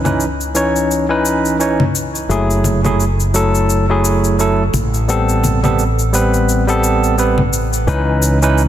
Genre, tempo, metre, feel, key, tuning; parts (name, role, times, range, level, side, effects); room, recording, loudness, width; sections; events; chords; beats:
sunset chillout; 86 BPM; 4/4; swing 57% on 16ths; C# minor; A4 = 441 Hz
barky tine electric piano; accompaniment; 0.0-8.6 s; E3 to C#5; -15 LUFS; moving between left 3 dB and right 4 dB; overdrive, auto-pan, digital delay
fretless electric bass; bass; 0.0-8.7 s; F#1 to C#2; -17 LUFS; equal
congas and cabasa; drums; 0.1-8.7 s; -20 LUFS; left 2 dB; overdrive
electronic kick drum; drums; 7.9-8.0 s; -21 LUFS; equal
moderate concert hall reverb, RT60 2.3 s; dense, heavily limited modern master; -13 LUFS; side -11 dB against mid
0.0-7.9 A section
0.0 C#m9; 2.3 F#m9; 4.7 Am9; 7.9 C#m9
0.21 0.90 1.60 | 2.30 3.00 3.69 4.39 | 5.09 5.79 6.49 7.18 | 7.88 8.58